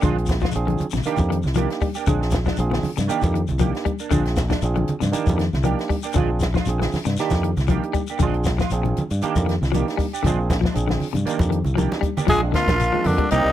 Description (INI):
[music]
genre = afrobeat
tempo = 118 BPM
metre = 4/4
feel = swing 54% on 16ths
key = Bb mixolydian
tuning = A4 = 444 Hz
[part]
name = barky tine electric piano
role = accompaniment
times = 0.0-13.5 s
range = G3 to D5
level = -27 LUFS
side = right 5 dB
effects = overdrive
[part]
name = clean electric guitar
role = arpeggios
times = 0.0-13.3 s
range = Bb2 to G3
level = -26 LUFS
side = left 9 dB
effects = none
[part]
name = clean electric guitar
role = stabs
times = 0.0-13.5 s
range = Eb3 to G4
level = -28 LUFS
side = right 9 dB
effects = ensemble chorus
[part]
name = fingered electric bass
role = bass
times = 0.0-13.5 s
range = Bb1 to G2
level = -22 LUFS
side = equal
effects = none
[part]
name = compact cocktail drum kit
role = drums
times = 0.0-13.4 s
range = hi-hat, kick drum, snare drum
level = -25 LUFS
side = equal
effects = none
[part]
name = congas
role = percussion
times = 0.0-13.2 s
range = none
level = -28 LUFS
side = right 2 dB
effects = none
[part]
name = shekere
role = percussion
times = 0.0-13.5 s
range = none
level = -32 LUFS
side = left 6 dB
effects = none
[part]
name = growling tenor saxophone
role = melody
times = 12.3-13.5 s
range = D4 to Ab4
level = -20 LUFS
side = left 1 dB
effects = none
[part]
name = raspy baritone saxophone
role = second line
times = 12.3-13.5 s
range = D3 to Ab3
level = -28 LUFS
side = left 3 dB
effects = none
[part]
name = trombone with bucket mute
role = second line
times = 12.3-13.5 s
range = Bb3 to F4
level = -28 LUFS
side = right 3 dB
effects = slapback echo
[sound]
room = little or no reverb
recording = none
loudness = -19 LUFS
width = side -12 dB against mid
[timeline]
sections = 0.0-12.3 A section; 12.3-13.5 B section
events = drum fill 11.8-12.3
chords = 0.0 Bb7; 1.1 Cm9; 2.1 Bb7; 3.1 Cm9; 4.1 Bb7; 5.1 Cm9; 6.2 Bb7; 7.2 Cm9; 8.2 Bb7; 9.2 Cm9; 10.2 Bb7; 11.3 Cm9; 12.3 Bb7